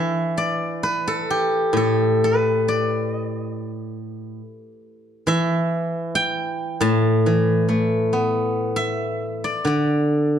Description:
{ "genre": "chinese traditional, Chinese solo plucked strings", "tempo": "68 BPM", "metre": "4/4", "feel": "rubato", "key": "A shang mode", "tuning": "A4 = 445 Hz", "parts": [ { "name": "steel-string zither", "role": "solo", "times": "0.0-10.4 s", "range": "A2 to A5", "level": "-19 LUFS", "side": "equal", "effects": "none" } ], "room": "wet recital hall reverb, RT60 1.3 s", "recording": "dark, warm production", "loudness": "-19 LUFS", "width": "side -9 dB against mid", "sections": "0.0-10.4 A section", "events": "none", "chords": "none", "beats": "0.83 | 1.76 2.67 3.54 4.41 | 5.29 6.18 7.04 7.91 | 8.78 9.67" }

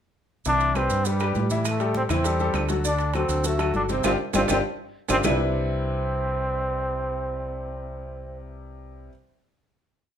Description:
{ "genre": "latin, salsa", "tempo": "201 BPM", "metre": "4/4", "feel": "straight", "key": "C major", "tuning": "A4 = 440 Hz", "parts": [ { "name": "brilliant trombone", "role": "melody", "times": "0.5-8.4 s", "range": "G3 to D4", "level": "-27 LUFS", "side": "right 1 dB", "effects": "none" }, { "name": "bright upright piano", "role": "accompaniment", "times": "0.5-9.1 s", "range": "C3 to E5", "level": "-28 LUFS", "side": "left 3 dB", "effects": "none" }, { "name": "fingered electric bass", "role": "bass", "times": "0.5-9.1 s", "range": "G1 to A2", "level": "-28 LUFS", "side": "equal", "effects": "none" }, { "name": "congas", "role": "percussion", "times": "0.5-5.3 s", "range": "none", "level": "-33 LUFS", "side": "equal", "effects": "none" }, { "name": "maracas", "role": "percussion", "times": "0.5-5.3 s", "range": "none", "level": "-35 LUFS", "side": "right 6 dB", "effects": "none" }, { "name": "timbales", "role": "percussion", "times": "0.6-5.3 s", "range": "none", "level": "-32 LUFS", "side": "right 6 dB", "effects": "none" }, { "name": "claves", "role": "percussion", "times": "0.8-5.3 s", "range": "none", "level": "-35 LUFS", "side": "equal", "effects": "none" } ], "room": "moderate large studio reverb, RT60 0.8 s", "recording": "minimal, uncompressed stereo recording", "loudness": "-22 LUFS", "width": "side -9 dB against mid", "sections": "0.5-5.2 verse; 5.2-7.6 final chord", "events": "band accent 4.0-5.2; drum fill 4.3-5.2", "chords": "0.5 Cmaj9; 1.6 Am7; 2.8 D7; 4.0 G7(no3); 5.2 Cmaj9", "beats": "| 0.46 0.75 1.05 1.35 | 1.65 1.95 2.25 2.55 | 2.85 3.15 3.44 3.74 | 4.04 4.34 4.64 4.94 | 5.24 5.54 5.84 6.14 | 6.43 6.73 7.03 7.33" }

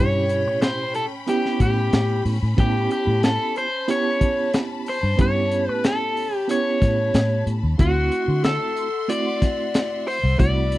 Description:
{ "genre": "straight-eighth soul blues", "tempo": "92 BPM", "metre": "4/4", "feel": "straight", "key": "A mixolydian", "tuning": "A4 = 440 Hz", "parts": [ { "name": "crunchy overdriven guitar", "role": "melody", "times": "0.0-10.8 s", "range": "F#4 to D5", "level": "-23 LUFS", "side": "left 1 dB", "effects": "none" }, { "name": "reed electric piano", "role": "accompaniment", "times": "0.0-10.8 s", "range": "B2 to G4", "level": "-26 LUFS", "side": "right 4 dB", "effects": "fast tremolo" }, { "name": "clear studio string section", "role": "sustained chords", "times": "0.0-10.8 s", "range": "C#4 to C6", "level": "-35 LUFS", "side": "left 2 dB", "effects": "none" }, { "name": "vintage muted fingered electric bass", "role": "bass", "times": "0.0-10.8 s", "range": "C2 to D3", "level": "-22 LUFS", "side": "equal", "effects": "none" }, { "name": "crunchy breakbeat drum kit", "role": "drums", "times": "0.3-10.8 s", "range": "hi-hat, kick drum, snare drum", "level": "-21 LUFS", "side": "equal", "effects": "none" } ], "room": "little or no reverb", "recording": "dry, close 1970s-style studio recording", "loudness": "-19 LUFS", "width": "side -16 dB against mid", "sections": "0.0-10.8 A section", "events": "none", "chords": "0.0 A9; 7.8 D9", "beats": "0.62 1.28 1.93 | 2.58 3.23 3.88 4.54 | 5.19 5.84 6.49 7.14 | 7.79 8.45 9.10 9.75 | 10.40" }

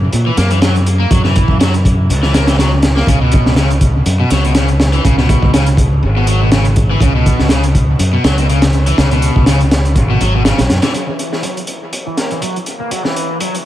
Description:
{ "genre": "breakbeat, breaks", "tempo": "122 BPM", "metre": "4/4", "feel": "swing 55% on 16ths", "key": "C# dorian", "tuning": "A4 = 440 Hz", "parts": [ { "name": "modern bright fingered electric bass", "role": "bass", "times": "0.0-10.8 s", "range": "G#1 to A#2", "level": "-13 LUFS", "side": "equal", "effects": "none" }, { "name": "crunchy breakbeat drum kit", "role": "drums", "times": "0.1-13.6 s", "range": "hi-hat, kick drum, snare drum", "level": "-14 LUFS", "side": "equal", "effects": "high-pass filter on kick, high-pass filter on hats, high-pass filter on snare, high-pass filter on room, dub echo" }, { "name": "crunchy overdriven guitar", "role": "riff", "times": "0.3-13.5 s", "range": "B2 to A#3", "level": "-18 LUFS", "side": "equal", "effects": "low-pass filter, dub echo" } ], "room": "small room ambience", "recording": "echo-heavy mix, vinyl crackle", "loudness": "-10 LUFS", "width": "side -13 dB against mid", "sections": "0.0-10.9 A section; 10.9-13.7 B section", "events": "filter sweep on overdriven electric guitar 10.9-13.7", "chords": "0.0 F#7; 3.1 C#7(no3); 10.9 F#7(no3)", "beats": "0.13 0.62 | 1.11 1.60 2.10 2.59 | 3.08 3.57 4.06 4.55 | 5.04 5.54 6.03 6.52 | 7.01 7.50 8.00 8.49 | 8.98 9.47 9.96 10.46 | 10.95 11.44 11.93 12.42 | 12.91 13.41" }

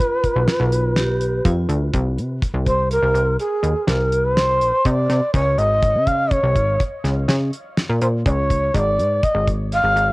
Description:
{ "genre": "progressive instrumental, band music in an uneven meter", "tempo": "123 BPM", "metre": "7/4", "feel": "straight", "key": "unclear", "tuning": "A4 = 437 Hz", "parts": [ { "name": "breathy reedy long shakuhachi", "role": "melody", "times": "0.0-10.1 s", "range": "Ab4 to F5", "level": "-19 LUFS", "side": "equal", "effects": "cassette tape, tape echo" }, { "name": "vibraphone with hard mallets", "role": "second line", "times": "0.0-1.9 s", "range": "F4 to G4", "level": "-27 LUFS", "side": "right 2 dB", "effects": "cassette tape" }, { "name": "archtop guitar, miked and amplified", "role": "accompaniment", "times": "0.0-1.9 s", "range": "none", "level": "barely audible", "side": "none", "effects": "none" }, { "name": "damped 70s drum kit", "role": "drums", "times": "0.2-10.1 s", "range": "hi-hat, kick drum, snare drum", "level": "-21 LUFS", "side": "equal", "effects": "cassette tape" }, { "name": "plucky analog bass", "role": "bass", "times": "0.4-10.1 s", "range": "Ab1 to Db3", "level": "-20 LUFS", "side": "equal", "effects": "none" } ], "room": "studio reverb", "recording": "home recording on cassette", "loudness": "-16 LUFS", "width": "side -23 dB against mid", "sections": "0.0-1.9 A section; 1.9-10.1 B section", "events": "shakuhachi solo 1.9-10.1", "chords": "0.0 G7/B; 1.9 C7(no3); 5.3 Db5; 8.7 N.C.", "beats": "0.48 0.96 1.45 | 1.94 2.42 2.91 3.40 3.88 4.37 4.85 | 5.34 5.83 6.31 6.80 7.29 7.77 8.26 | 8.75 9.23 9.72" }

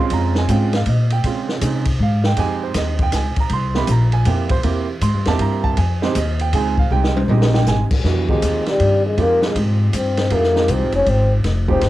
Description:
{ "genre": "jazz, small-group swing and bop", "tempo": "159 BPM", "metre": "3/4", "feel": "swing 64% on 8ths", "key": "F minor", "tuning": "A4 = 440 Hz", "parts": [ { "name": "warm baby grand piano", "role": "accompaniment", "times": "0.0-11.8 s", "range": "Eb3 to C6", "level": "-22 LUFS", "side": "right 7 dB", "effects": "none" }, { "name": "upright bass", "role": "bass", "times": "0.1-11.9 s", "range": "F1 to Db3", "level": "-18 LUFS", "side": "left 1 dB", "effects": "none" }, { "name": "open jazz drum kit", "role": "drums", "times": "0.1-11.9 s", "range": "crash cymbal, hi-hat, kick drum, ride cymbal, snare drum, toms", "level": "-22 LUFS", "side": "left 1 dB", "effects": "cassette tape" }, { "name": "trombone with cup mute", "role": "melody", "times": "8.3-11.9 s", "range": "G3 to Db4", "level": "-18 LUFS", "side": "left 2 dB", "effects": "cassette tape" } ], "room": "studio reverb", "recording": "home recording on cassette", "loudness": "-15 LUFS", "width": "side -15 dB against mid", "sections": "0.0-8.0 A section; 8.0-11.9 A section", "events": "drum fill 6.9-7.7; trombone solo 8.0-11.9", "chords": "0.0 Bbm9; 2.4 Fm9; 3.5 C7; 5.8 Fm9", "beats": "| 0.11 0.49 0.86 | 1.24 1.62 2.00 | 2.38 2.75 3.13 | 3.51 3.89 4.27 | 4.64 5.02 5.40 | 5.78 6.16 6.53 | 6.91 7.29 7.67 | 8.04 8.42 8.80 | 9.18 9.56 9.93 | 10.31 10.69 11.07 | 11.45 11.82" }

